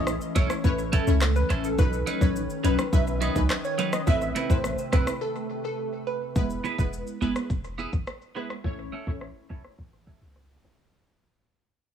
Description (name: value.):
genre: dancehall.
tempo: 105 BPM.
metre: 4/4.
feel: straight.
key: unclear.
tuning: A4 = 440 Hz.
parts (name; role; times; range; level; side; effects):
synth brass stab; accompaniment; 0.0-10.8 s; F#3 to C#5; -31 LUFS; left 1 dB; chorus, phaser.
glassy FM pad; sustained chords; 0.0-6.3 s; C3 to B4; -34 LUFS; left 2 dB; ensemble chorus, built-in reverb.
punchy sub bass; bass; 0.0-10.9 s; E1 to C#2; -27 LUFS; equal; none.
afro-pop drum kit; drums; 0.1-10.8 s; handclaps, hi-hat, kick drum, rim click, shaker; -27 LUFS; equal; none.
glassy wavetable pluck; melody; 0.4-6.2 s; A4 to E5; -31 LUFS; right 2 dB; chorus, tape echo.
clean electric guitar; arpeggios; 0.4-10.8 s; F#3 to B4; -31 LUFS; right 7 dB; phaser.
room: light reverb.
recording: echo-heavy mix, low-pass filter.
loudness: -24 LUFS.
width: side -8 dB against mid.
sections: 0.0-6.4 A section; 6.4-10.9 B section.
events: break 5.2-6.4; fade-out 6.4-10.9; filter sweep 6.4-10.9.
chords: 0.0 A; 1.8 Badd9; 4.1 Amadd9; 6.4 E; 8.6 A.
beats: 0.07 0.64 1.21 | 1.78 2.36 2.93 3.50 | 4.07 4.64 5.21 5.79 | 6.36 6.93 7.50 8.07 | 8.64 9.21 9.79 10.36.